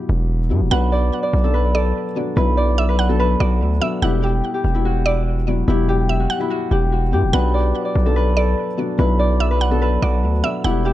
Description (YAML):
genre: hip hop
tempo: 145 BPM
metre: 4/4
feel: half-time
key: B minor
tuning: A4 = 438 Hz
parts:
  - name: felt-muted upright piano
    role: accompaniment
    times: 0.0-10.9 s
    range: B2 to G4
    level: -24 LUFS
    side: left 3 dB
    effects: none
  - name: distorted 808-style bass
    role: bass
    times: 0.1-10.9 s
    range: E1 to G2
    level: -18 LUFS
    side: equal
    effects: distortion
  - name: Celtic harp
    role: melody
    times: 0.7-10.9 s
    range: E4 to D5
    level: -22 LUFS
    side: left 1 dB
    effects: tape echo
  - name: mallet-like synth pluck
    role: second line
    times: 0.7-10.9 s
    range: D5 to F#5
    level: -25 LUFS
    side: right 5 dB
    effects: chorus, tape echo
room: light reverb, small room ambience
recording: echo-heavy mix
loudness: -16 LUFS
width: side -14 dB against mid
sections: 0.0-10.9 A section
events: break 0.0-0.7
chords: 0.0 Emadd9; 0.7 Bm; 4.0 Emadd9; 7.3 Bm